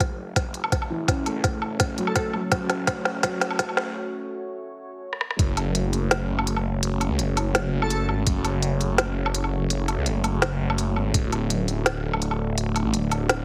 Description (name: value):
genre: half-time drum and bass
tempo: 167 BPM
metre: 4/4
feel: swing 53% on 16ths, half-time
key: F# minor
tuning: A4 = 438 Hz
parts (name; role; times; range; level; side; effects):
- deep dark ambient pad; sustained chords; 0.0-13.4 s; A3 to D5; -33 LUFS; equal; chorus, built-in reverb, sidechain pumping
- phased detuned saw bass; bass; 0.0-13.4 s; D1 to C#2; -29 LUFS; equal; phaser, high-pass filter
- electronic kick drum; drums; 0.0-5.5, 8.3, 11.1-11.2 s; none; -28 LUFS; equal; studio reverb
- organic electronic drum kit; drums; 0.0-13.4 s; hi-hat, rim click, shaker, snare drum, woodblock; -27 LUFS; equal; high-pass filter on hats, studio reverb, high-pass filter on snare, high-pass filter on perc
- felt-muted upright piano; arpeggios; 0.9-5.4 s; E3 to C#4; -34 LUFS; equal; low-pass filter, delay
- airy dreamy lead; melody; 2.1-2.2, 7.8-8.0 s; A4; -36 LUFS; equal; chorus, delay
room: moderate echo chamber reverb, RT60 1.3 s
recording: heavily compressed radio sound, multiband compression, high-pass filter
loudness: -25 LUFS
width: mono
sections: 0.0-5.4 A section; 5.4-13.4 B section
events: build-up 0.0-5.4; drum fill 0.0-4.0, 5.1; break 4.0-5.4; drop 5.4-13.4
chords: 0.0 F#m; 11.1 D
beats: 0.00 0.36 0.72 | 1.08 1.44 1.80 2.16 | 2.52 2.88 3.24 3.60 | 3.96 4.32 4.67 5.03 | 5.39 5.75 6.11 6.47 | 6.83 7.19 7.55 7.91 | 8.27 8.63 8.98 9.35 | 9.70 10.06 10.42 10.78 | 11.14 11.50 11.86 12.22 | 12.58 12.94 13.30